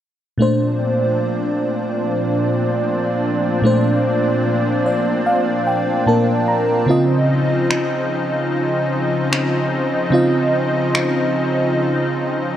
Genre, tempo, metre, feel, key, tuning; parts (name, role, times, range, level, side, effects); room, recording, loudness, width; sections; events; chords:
contemporary R&B; 74 BPM; 4/4; swing 54% on 16ths; Bb major; A4 = 441 Hz
FM electric piano with soft pad layer; accompaniment; 0.4-12.6 s; Bb2 to Bb5; -18 LUFS; equal; chorus
lush unison pad; sustained chords; 0.4-12.6 s; Bb2 to Eb4; -19 LUFS; equal; chorus
electronic finger snaps; drums; 7.7-11.1 s; -24 LUFS; equal
light reverb, digital ambience; worn, warbling old tape, cassette tape, warbly pitch drift; -16 LUFS; side -10 dB against mid
0.4-12.6 A section
FM electric piano fill 4.5-6.9
0.4 Bbmaj9; 6.9 Dbmaj9